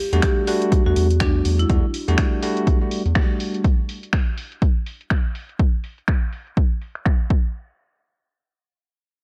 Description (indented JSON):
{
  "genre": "deep house",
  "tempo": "123 BPM",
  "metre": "4/4",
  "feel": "swing 58% on 16ths",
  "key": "E minor",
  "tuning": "A4 = 443 Hz",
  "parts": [
    { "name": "marimba with hard mallets", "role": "melody", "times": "0.0-1.7 s", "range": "D4 to G4", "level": "-28 LUFS", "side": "equal", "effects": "analog delay" },
    { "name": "barky tine electric piano", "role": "stabs", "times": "0.1-3.6 s", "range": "G3 to F#4", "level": "-27 LUFS", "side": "equal", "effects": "sidechain pumping, analog delay" },
    { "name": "round analog bass", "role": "bass", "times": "0.1-3.1 s", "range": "E2", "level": "-21 LUFS", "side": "equal", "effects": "sidechain pumping" },
    { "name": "punchy analog drum machine", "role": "drums", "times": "0.1-7.2 s", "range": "finger snaps, hi-hat", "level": "-31 LUFS", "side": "equal", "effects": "overdrive, low-pass filter on perc, low-pass filter on hats, low-pass filter on snare, low-pass filter on toms, low-pass filter on cymbals" },
    { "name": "electronic kick drum", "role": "drums", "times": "0.2-7.4 s", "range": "none", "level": "-21 LUFS", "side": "equal", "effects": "overdrive" }
  ],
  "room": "digital ambience",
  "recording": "cassette tape",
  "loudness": "-21 LUFS",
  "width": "mono",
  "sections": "0.0-7.5 A section; 7.5-9.2 B section",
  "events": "filter sweep on drum 0.0-7.5",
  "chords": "0.0 Em11; 3.6 N.C.",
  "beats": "0.23 0.72 1.21 | 1.69 2.18 2.67 3.16 | 3.64 4.13 4.62 5.11 | 5.59 6.08 6.57 7.06"
}